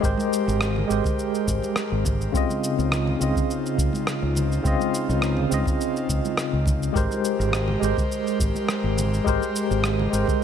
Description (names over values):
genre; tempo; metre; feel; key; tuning
sunset chillout; 104 BPM; 4/4; swing 54% on 16ths; Ab major; A4 = 440 Hz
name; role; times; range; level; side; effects
tine electric piano; accompaniment; 0.0-10.4 s; Db3 to Eb5; -25 LUFS; moving between left 8 dB and right 6 dB; medium stereo tremolo, auto-pan, digital delay
airy breathy pad; sustained chords; 0.0-10.4 s; Db3 to C5; -31 LUFS; left 1 dB; chorus
fretless electric bass; bass; 0.0-10.2 s; Ab1 to Db2; -25 LUFS; equal; none
electronic kick drum; drums; 0.0-10.4 s; none; -26 LUFS; equal; none
electronic shaker and rim click; drums; 0.0-10.4 s; none; -30 LUFS; equal; none
congas; percussion; 0.2-10.4 s; none; -34 LUFS; right 4 dB; none
room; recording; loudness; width
light reverb, digital ambience; none; -21 LUFS; side -8 dB against mid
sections
0.0-10.4 A section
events
none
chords
0.0 Abmaj9; 2.3 Dbmaj9; 7.0 Abmaj9